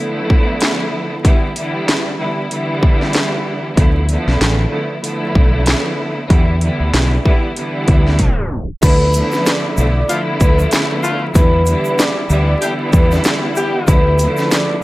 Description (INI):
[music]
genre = hip hop, boom-bap hip-hop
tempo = 95 BPM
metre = 4/4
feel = swing 58% on 16ths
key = D dorian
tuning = A4 = 441 Hz
[part]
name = clear studio string section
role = accompaniment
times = 0.0-14.8 s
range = D3 to E4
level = -19 LUFS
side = equal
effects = cassette tape, high-pass filter, low-pass filter
[part]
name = house drum kit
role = drums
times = 0.3-14.7 s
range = crash cymbal, hi-hat, kick drum, shaker, snare drum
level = -15 LUFS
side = equal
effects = none
[part]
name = deep dub fingered electric bass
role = bass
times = 3.8-14.3 s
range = A1 to E2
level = -15 LUFS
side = equal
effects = none
[part]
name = vibraphone with soft mallets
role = melody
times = 8.8-14.8 s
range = B4 to D6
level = -20 LUFS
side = equal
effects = high-pass filter, low-pass filter, digital delay
[part]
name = percussive tonewheel organ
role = sustained chords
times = 8.8-14.8 s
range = F3 to B5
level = -29 LUFS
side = equal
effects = none
[part]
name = egg shaker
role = percussion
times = 8.8-14.7 s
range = none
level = -33 LUFS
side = left 4 dB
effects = none
[part]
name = warm horn section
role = stabs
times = 10.1-14.0 s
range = A3 to G4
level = -22 LUFS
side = left 2 dB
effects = high-pass filter, low-pass filter, digital delay
[sound]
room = studio ambience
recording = vinyl crackle, tape stop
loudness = -13 LUFS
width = side -18 dB against mid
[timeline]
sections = 0.0-8.8 A section; 8.8-14.8 B section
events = break 0.0-3.8; drum fill 8.2-8.8; tape stop 8.2-8.8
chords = 0.0 Dm69; 1.2 Em7; 3.8 Dm69; 6.3 Em7; 8.8 Dm69; 11.4 Em7; 13.9 Dm69